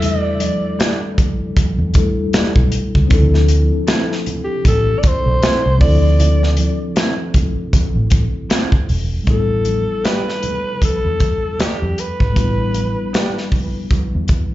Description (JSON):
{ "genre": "lush 1970s-style soul", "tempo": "78 BPM", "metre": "4/4", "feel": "swing 58% on 16ths", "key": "unclear", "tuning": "A4 = 440 Hz", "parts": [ { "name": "raspy alto saxophone", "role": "melody", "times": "0.0-13.5 s", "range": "G4 to D5", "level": "-22 LUFS", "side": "equal", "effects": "plate reverb, slapback echo, analog delay" }, { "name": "mellow tine electric piano", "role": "accompaniment", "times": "0.0-14.5 s", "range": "F3 to B4", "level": "-23 LUFS", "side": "left 3 dB", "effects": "medium stereo tremolo, slapback echo" }, { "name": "vintage muted fingered electric bass", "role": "bass", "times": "0.0-14.4 s", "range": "E1 to F2", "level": "-16 LUFS", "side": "equal", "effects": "none" }, { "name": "modern studio drum kit", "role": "drums", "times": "0.0-14.5 s", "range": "hi-hat, kick drum, snare drum", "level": "-17 LUFS", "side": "equal", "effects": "none" }, { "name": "congas", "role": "percussion", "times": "0.0-14.5 s", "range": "none", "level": "-27 LUFS", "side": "right 3 dB", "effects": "none" }, { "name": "electric guitar through a small old amp", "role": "riff", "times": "0.8-13.3 s", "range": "F3 to G4", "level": "-24 LUFS", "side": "right 5 dB", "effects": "slapback echo" } ], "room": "little or no reverb", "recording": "live gig heard through the venue's PA, club reverb, nothing above 7.6 kHz", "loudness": "-14 LUFS", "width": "side -15 dB against mid", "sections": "0.0-9.3 A section; 9.3-14.5 B section", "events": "none", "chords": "0.0 A7sus4/E; 3.1 Dm9; 9.3 A9sus4" }